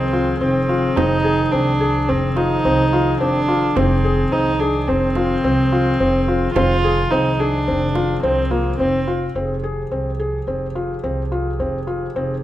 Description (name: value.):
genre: contemporary instrumental, chamber music in an uneven meter.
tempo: 107 BPM.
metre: 5/4.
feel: straight.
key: F dorian.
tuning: A4 = 444 Hz.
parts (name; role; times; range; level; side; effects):
dark viola; second line; 0.0-9.3 s; Bb3 to F4; -20 LUFS; equal; none.
mellow woodwind section; sustained chords; 0.0-12.4 s; Eb3 to Ab4; -28 LUFS; equal; none.
felt-muted upright piano; arpeggios; 0.0-12.3 s; C4 to Ab4; -21 LUFS; left 1 dB; none.
upright bass; bass; 0.0-12.4 s; F1 to C2; -22 LUFS; right 1 dB; none.
frame drum; percussion; 0.1-8.2 s; none; -27 LUFS; right 5 dB; none.
room: moderate recital hall reverb, RT60 1.5 s.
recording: none.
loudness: -16 LUFS.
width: side -13 dB against mid.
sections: 0.0-9.4 A section; 9.4-12.4 B section.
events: none.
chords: 0.0 Fm7; 9.4 Fm9.